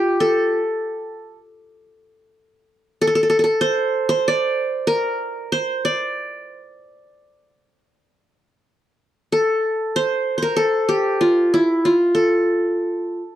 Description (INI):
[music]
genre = Turkish makam ensemble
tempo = 191 BPM (eighths)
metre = 9/8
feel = straight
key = unclear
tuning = A4 = 440 Hz
[part]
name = qanun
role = solo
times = 0.0-13.4 s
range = E4 to D5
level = -17 LUFS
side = equal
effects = none
[sound]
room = moderate studio ambience, RT60 0.5 s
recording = dark, warm production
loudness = -17 LUFS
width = side -12 dB against mid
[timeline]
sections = 0.0-8.7 A section; 8.7-13.4 B section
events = none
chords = none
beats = | 0.19 0.50 0.82 1.13 1.45 1.76 2.08 2.39 2.71 | 3.02 3.34 3.65 3.97 4.28 4.59 4.91 5.22 5.54 | 5.85 6.17 6.48 6.79 7.11 7.42 7.74 8.05 8.36 | 8.68 8.99 9.30 9.62 9.93 10.24 10.56 10.87 11.19 | 11.50 11.81 12.13 12.44 12.75 13.07